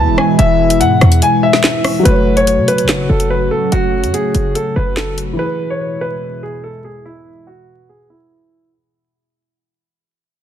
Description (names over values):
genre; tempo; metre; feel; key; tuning
hip hop, drill; 144 BPM; 4/4; half-time; unclear; A4 = 440 Hz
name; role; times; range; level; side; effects
warm concert grand piano; melody; 0.0-8.7 s; E4 to A5; -16 LUFS; left 1 dB; low-pass filter, ping-pong delay
dark grand piano; accompaniment; 0.0-8.7 s; E3 to C#5; -22 LUFS; left 1 dB; low-pass filter
dark analog pad; sustained chords; 0.0-8.7 s; B2 to F#4; -18 LUFS; right 1 dB; chorus, phaser, low-pass filter
short 808-style bass; bass; 0.0-5.4 s; E1 to C#3; -15 LUFS; equal; none
drill drum kit; drums; 0.2-5.3 s; handclaps, hi-hat, rim click, snare drum; -17 LUFS; equal; overdrive
room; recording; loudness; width
light reverb, small room reverb; dense, heavily limited modern master, vinyl crackle; -11 LUFS; side -10 dB against mid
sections
0.0-2.1 A section; 2.1-8.7 B section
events
break 1.2-2.1; fade-out 2.1-8.7; filter sweep 2.1-8.7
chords
0.0 E; 2.1 F#m; 5.4 E